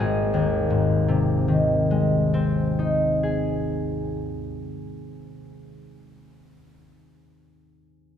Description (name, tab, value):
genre	classical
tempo	40 BPM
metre	3/4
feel	rubato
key	Ab major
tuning	A4 = 439 Hz
part	concert harp	accompaniment	0.0-6.0 s	Ab1 to Ab4	-21 LUFS	left 1 dB	none
room	wet scoring stage reverb, RT60 1.5 s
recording	minimal, uncompressed stereo recording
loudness	-20 LUFS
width	side -8 dB against mid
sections	0.0-4.5 A section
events	none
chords	0.0 Ab